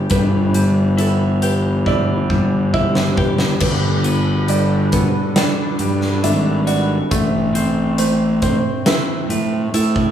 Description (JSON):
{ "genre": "post-rock", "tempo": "69 BPM", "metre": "4/4", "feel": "straight", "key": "G major", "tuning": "A4 = 439 Hz", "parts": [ { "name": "hand-pumped harmonium", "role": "sustained chords", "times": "0.0-10.1 s", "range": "E3 to B4", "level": "-26 LUFS", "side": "equal", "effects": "none" }, { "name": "felt-muted upright piano", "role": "arpeggios", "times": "0.0-10.1 s", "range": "A4 to E5", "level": "-26 LUFS", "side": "right 5 dB", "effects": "none" }, { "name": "semi-hollow electric guitar", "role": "arpeggios", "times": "0.0-10.1 s", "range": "G3 to G4", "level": "-20 LUFS", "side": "left 2 dB", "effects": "none" }, { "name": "fuzz fingered electric bass", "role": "bass", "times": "0.0-10.1 s", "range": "G1 to A2", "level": "-18 LUFS", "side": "equal", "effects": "overdrive" }, { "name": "huge arena drum kit", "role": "drums", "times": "0.1-10.1 s", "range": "crash cymbal, hi-hat, kick drum, snare drum", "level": "-21 LUFS", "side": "equal", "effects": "none" } ], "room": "moderate scoring stage reverb, RT60 1.9 s", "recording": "recorded in a church or concert hall, small room ambience", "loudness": "-15 LUFS", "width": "side -9 dB against mid", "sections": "0.0-3.6 A section; 3.6-10.1 B section", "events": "drum fill 1.9-3.6", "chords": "0.0 G; 3.6 Gmaj7; 7.1 Amadd9", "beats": "| 0.11 0.99 1.86 2.74 | 3.61 4.49 5.36 6.24 | 7.11 7.98 8.86 9.73" }